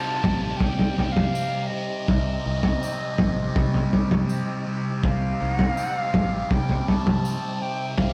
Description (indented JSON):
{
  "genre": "psychedelic rock",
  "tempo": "81 BPM",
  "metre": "4/4",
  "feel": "straight",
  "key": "C dorian",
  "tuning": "A4 = 441 Hz",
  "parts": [
    { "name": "breathy bright jazz flute", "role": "melody", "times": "0.0-8.1 s", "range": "Eb5 to A5", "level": "-33 LUFS", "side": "equal", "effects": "none" },
    { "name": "tonewheel organ", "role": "sustained chords", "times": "0.0-8.1 s", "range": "C4 to G4", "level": "-41 LUFS", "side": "equal", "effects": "slow rotary speaker, overdrive, chorus vibrato" },
    { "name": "thick fuzz guitar", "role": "riff", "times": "0.0-8.1 s", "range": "C3 to Eb4", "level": "-31 LUFS", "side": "equal", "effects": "distortion, phaser" },
    { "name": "fingered electric bass", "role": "bass", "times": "0.2-8.1 s", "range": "A1 to C3", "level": "-31 LUFS", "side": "equal", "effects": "none" },
    { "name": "cloth-damped thuddy drum kit", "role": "drums", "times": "0.2-8.1 s", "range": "kick drum, toms", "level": "-26 LUFS", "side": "equal", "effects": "none" },
    { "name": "tambourine", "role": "percussion", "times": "1.4-7.4 s", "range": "none", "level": "-48 LUFS", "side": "equal", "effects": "none" }
  ],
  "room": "moderate stone room reverb, RT60 1.1 s",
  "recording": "rough rehearsal-room recording",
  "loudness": "-24 LUFS",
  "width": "mono",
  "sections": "0.0-8.1 A section",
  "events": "none",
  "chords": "0.0 Cm"
}